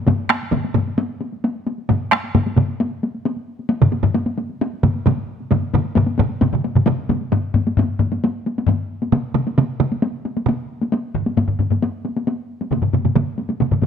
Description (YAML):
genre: japanese traditional, taiko drum ensemble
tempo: 133 BPM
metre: 4/4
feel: straight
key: none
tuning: none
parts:
  - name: taiko ensemble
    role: percussion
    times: 0.1-13.9 s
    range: none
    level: -22 LUFS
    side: left 2 dB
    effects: none
  - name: taiko ensemble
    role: percussion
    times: 0.1-13.9 s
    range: none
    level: -20 LUFS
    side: left 3 dB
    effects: none
  - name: taiko ensemble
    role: percussion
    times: 0.1-13.9 s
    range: none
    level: -20 LUFS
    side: right 4 dB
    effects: none
room: moderate recital hall reverb, RT60 1.4 s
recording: close, detailed microphones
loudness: -18 LUFS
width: side -7 dB against mid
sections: 0.0-7.3 A section; 7.3-13.9 B section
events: none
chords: none